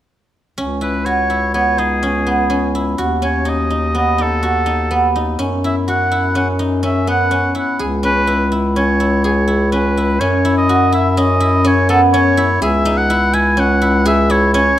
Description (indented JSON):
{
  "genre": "contemporary instrumental, chamber music in an uneven meter",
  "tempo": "125 BPM",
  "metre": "5/4",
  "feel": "straight",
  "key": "C# minor",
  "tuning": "A4 = 440 Hz",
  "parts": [
    { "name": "guzheng", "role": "arpeggios", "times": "0.6-14.8 s", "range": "B3 to G#4", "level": "-17 LUFS", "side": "right 1 dB", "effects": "none" },
    { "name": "warm bass clarinet", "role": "bass", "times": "0.6-14.8 s", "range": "C#2 to F#2", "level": "-17 LUFS", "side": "left 1 dB", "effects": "none" },
    { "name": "clear oboe", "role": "melody", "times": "0.8-14.8 s", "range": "G#4 to G#5", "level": "-18 LUFS", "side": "equal", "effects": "none" }
  ],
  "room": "light reverb",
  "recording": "close, detailed microphones",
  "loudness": "-13 LUFS",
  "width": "side -12 dB against mid",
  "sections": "0.6-10.2 A section; 10.2-14.8 B section",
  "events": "none",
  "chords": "0.6 C#m7; 3.0 B7/D#; 5.4 F#5; 7.8 C#m7; 10.2 F#5; 12.6 C#m"
}